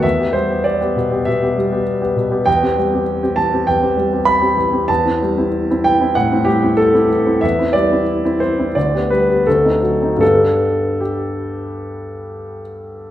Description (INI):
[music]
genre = classical, romantic character piece for solo piano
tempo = 74-101 BPM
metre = 4/4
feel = rubato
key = G major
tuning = A4 = 441 Hz
[part]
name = clear concert grand piano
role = solo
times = 0.0-13.1 s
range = D2 to B5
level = -14 LUFS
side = equal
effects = none
[sound]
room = wet large studio reverb, RT60 1.5 s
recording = heard from further back in the room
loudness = -14 LUFS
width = side -12 dB against mid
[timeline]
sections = 0.0-13.1 A section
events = none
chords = 0.0 Em; 2.5 C/E; 4.9 Am7/E; 7.4 C/E; 8.8 G/D; 9.5 D7b9; 10.2 G